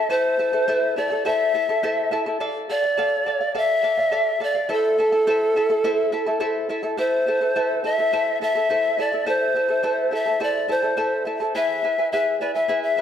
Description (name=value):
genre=andean folk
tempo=105 BPM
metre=4/4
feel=straight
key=A minor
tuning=A4 = 436 Hz
part: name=breathy polished pan flute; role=melody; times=0.0-13.0 s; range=A4 to E5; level=-20 LUFS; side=equal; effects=none
part: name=charango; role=accompaniment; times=0.0-13.0 s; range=E4 to A5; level=-25 LUFS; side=left 1 dB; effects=none
room=moderate plate reverb, RT60 2.4 s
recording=dreamy mix soaked in reverb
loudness=-19 LUFS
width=side -9 dB against mid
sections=0.0-7.0 A section; 7.0-13.0 B section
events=none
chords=0.0 Am; 2.4 Dm; 4.7 Am; 11.6 E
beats=| 0.09 0.67 1.25 1.83 | 2.40 2.98 3.56 4.13 | 4.71 5.28 5.85 6.42 | 7.00 7.57 8.14 8.71 | 9.28 9.85 10.42 10.99 | 11.55 12.12 12.69